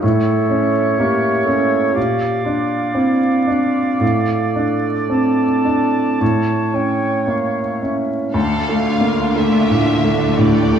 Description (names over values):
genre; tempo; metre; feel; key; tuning
classical, romantic movement for piano and orchestra; 54-62 BPM; 4/4; rubato; D minor; A4 = 441 Hz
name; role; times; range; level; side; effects
clear baby grand piano; melody; 0.0-10.8 s; D2 to D4; -16 LUFS; equal; none
clear oboe; second line; 0.0-8.0 s; C#5 to D5; -24 LUFS; equal; none
concert flute; second line; 0.0-8.3 s; E5 to A5; -25 LUFS; equal; none
mellow clarinet; second line; 0.0-7.3 s; E4 to A4; -24 LUFS; right 5 dB; none
warm symphonic violin section; melody; 8.3-10.8 s; D5 to F5; -25 LUFS; left 2 dB; none
warm symphonic violin section; second line; 8.3-10.8 s; F4 to A4; -25 LUFS; right 2 dB; none
warm symphonic viola section; accompaniment; 8.3-10.8 s; A3 to D4; -23 LUFS; right 1 dB; none
dark studio double bass section; bass; 8.3-10.8 s; D2; -24 LUFS; right 1 dB; none
rich symphonic cello section; bass; 8.3-10.8 s; D3; -23 LUFS; equal; none
room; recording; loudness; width
moderate scoring stage reverb, RT60 1.9 s; vinyl crackle; -14 LUFS; side -8 dB against mid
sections
0.0-8.3 A section; 8.3-10.8 B section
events
none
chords
0.0 A; 2.0 Bb; 4.0 Dm/A; 6.2 A; 8.3 Dm